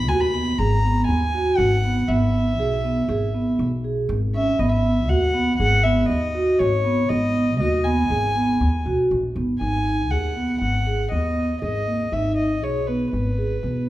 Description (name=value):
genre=contemporary instrumental, chamber music in an uneven meter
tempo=120 BPM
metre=5/4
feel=straight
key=G# minor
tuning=A4 = 439 Hz
part: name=warm violin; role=melody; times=0.0-13.9 s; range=B4 to B5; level=-25 LUFS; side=left 1 dB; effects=none
part: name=upright bass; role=bass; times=0.0-13.9 s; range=G#1 to D#2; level=-23 LUFS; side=left 1 dB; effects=none
part: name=vibraphone with soft mallets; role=arpeggios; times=0.1-13.9 s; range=A#3 to G#4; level=-22 LUFS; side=right 2 dB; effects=none
room=moderate recital hall reverb, RT60 1.7 s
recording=recorded in a church or concert hall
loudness=-19 LUFS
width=side -15 dB against mid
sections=0.0-9.6 A section; 9.6-13.9 A section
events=none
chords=0.0 G#m7; 2.1 E/G#; 4.6 G#m7; 9.6 G#m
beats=0.09 0.59 1.09 1.59 | 2.09 2.59 3.09 3.59 4.09 | 4.59 5.10 5.60 6.10 6.60 | 7.10 7.60 8.10 8.61 9.11 | 9.61 10.11 10.61 11.12 11.62 | 12.12 12.62 13.13 13.63